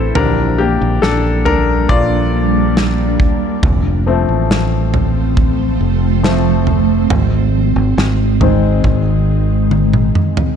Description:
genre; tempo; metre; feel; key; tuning
pop ballad; 69 BPM; 4/4; straight; unclear; A4 = 439 Hz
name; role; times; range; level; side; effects
clear concert grand piano; accompaniment; 0.0-10.6 s; D3 to D5; -18 LUFS; left 6 dB; none
ethereal airy pad; sustained chords; 0.0-10.6 s; Eb3 to E4; -18 LUFS; right 2 dB; ensemble chorus, built-in reverb, phaser
fingered electric bass; bass; 0.0-10.1 s; F1 to Bb1; -16 LUFS; equal; none
natural country drum kit; drums; 0.2-10.6 s; kick drum, snare drum, toms; -17 LUFS; right 1 dB; none
room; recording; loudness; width
light reverb; dark, warm production; -11 LUFS; side -7 dB against mid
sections
0.0-10.6 A section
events
grand piano solo 0.0-10.6; drum fill 9.7-10.6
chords
0.2 Bb6; 3.6 F; 7.1 Ab

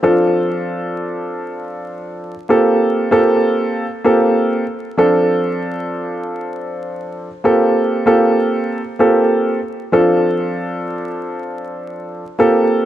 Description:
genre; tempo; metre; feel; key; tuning
hip hop; 97 BPM; 4/4; swing 58% on 16ths; unclear; A4 = 441 Hz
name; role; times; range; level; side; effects
dark upright piano; solo; 0.0-12.9 s; F3 to A4; -14 LUFS; right 1 dB; analog delay
room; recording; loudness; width
moderate spring reverb, RT60 1.1 s, small room ambience; echo-heavy mix, vinyl crackle; -14 LUFS; side -12 dB against mid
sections
0.0-12.9 A section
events
none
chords
0.0 Dm7/F; 2.5 Gm11; 5.0 Dm7/F; 7.5 Gm11; 9.9 Dm7/F

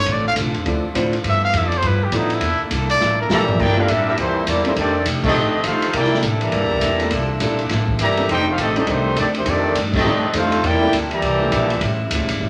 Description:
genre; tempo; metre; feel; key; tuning
jazz, big band swing; 204 BPM; 4/4; swing 61% on 8ths; C mixolydian, C major from 3.6 s; A4 = 440 Hz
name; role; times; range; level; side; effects
clear trumpet; melody; 0.0-3.4 s; Eb4 to F5; -22 LUFS; equal; none
warm saxophone section; sustained chords; 0.0-12.5 s; C3 to E4; -32 LUFS; equal; none
upright bass; bass; 0.0-12.5 s; F1 to D3; -26 LUFS; equal; none
vintage hollow-body jazz guitar; accompaniment; 0.1-12.5 s; F2 to A4; -31 LUFS; equal; none
open jazz drum kit; drums; 0.1-12.5 s; crash cymbal, hi-hat, kick drum, ride cymbal, snare drum, toms; -26 LUFS; equal; none
warm upright piano; accompaniment; 0.7-11.5 s; F3 to C5; -27 LUFS; equal; none
warm trumpet section; melody; 3.3-12.0 s; A3 to Bb5; -23 LUFS; equal; none
warm trombone section; second line; 3.3-12.0 s; Eb3 to G4; -26 LUFS; equal; none
room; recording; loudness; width
wet large studio reverb, RT60 0.9 s; none; -19 LUFS; mono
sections
0.0-3.6 A section; 3.6-12.5 B section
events
trumpet solo 0.0-3.6; drum fill 3.0-3.6; band accent 5.2, 9.9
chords
0.0 Dm7; 1.2 G13; 2.4 C13; 4.8 F13; 5.9 C13; 8.3 F13; 10.6 C13; 11.8 A7

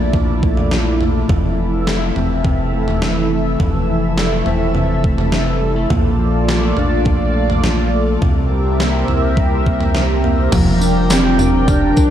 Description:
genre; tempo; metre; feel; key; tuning
dream pop; 104 BPM; 4/4; straight; F major; A4 = 440 Hz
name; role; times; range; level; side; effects
phased analog pad; sustained chords; 0.0-12.1 s; Bb2 to G5; -20 LUFS; equal; phaser, chorus
mellow electric guitar; arpeggios; 0.0-12.1 s; F2 to G4; -20 LUFS; left 1 dB; lush chorus, tape echo
saturated sub bass; bass; 0.0-12.1 s; F1 to C2; -20 LUFS; equal; none
gated 80s digital drum machine; drums; 0.1-12.1 s; crash cymbal, kick drum, snare drum, tambourine, toms; -19 LUFS; right 1 dB; gated reverb, gated reverb snare, overdrive
hollow clarinet-like synth lead; melody; 11.1-12.1 s; C4 to D4; -15 LUFS; right 1 dB; chorus, tape echo
room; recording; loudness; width
light reverb; dark, warm production; -13 LUFS; side -10 dB against mid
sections
0.0-10.5 A section; 10.5-12.1 B section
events
none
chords
0.0 Bbmaj7; 1.3 Fmaj7; 5.9 Bbmaj7; 8.2 C7; 10.5 Gm7

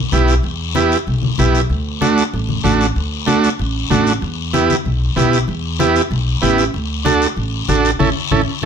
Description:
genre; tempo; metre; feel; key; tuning
latin, cumbia; 190 BPM; 4/4; straight; D major; A4 = 440 Hz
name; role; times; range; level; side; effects
upright bass; bass; 0.0-8.7 s; A1 to E2; -19 LUFS; equal; none
overdriven combo organ; accompaniment; 0.1-8.7 s; A3 to A4; -16 LUFS; right 4 dB; none
congas; percussion; 0.1-8.7 s; none; -23 LUFS; left 6 dB; none
guiro; percussion; 0.1-8.7 s; none; -25 LUFS; left 9 dB; none
room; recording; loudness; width
moderate studio reverb, RT60 0.7 s; none; -14 LUFS; side -7 dB against mid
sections
0.0-8.7 A section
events
band accent 8.0-8.7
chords
0.0 Em; 1.7 D; 4.2 Em; 6.7 D; 8.0 A

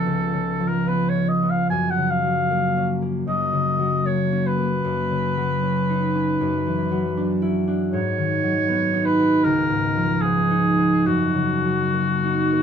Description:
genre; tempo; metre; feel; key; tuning
classical, impressionist duo for oboe and harp; 77 BPM; 4/4; uneven beats, rubato; F# major; A4 = 442 Hz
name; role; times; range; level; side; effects
warm oboe; melody; 0.0-12.6 s; F#4 to G#5; -24 LUFS; equal; none
concert harp; accompaniment; 0.0-12.6 s; C#2 to E4; -20 LUFS; equal; none
room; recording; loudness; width
light reverb; dark, warm production; -19 LUFS; side -7 dB against mid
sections
0.0-12.6 A section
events
none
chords
0.0 C#aug7; 1.7 F#maj7; 4.8 Badd9/F#; 6.4 Esus2/F#; 7.9 G#m7; 9.4 C#13; 11.1 F#6

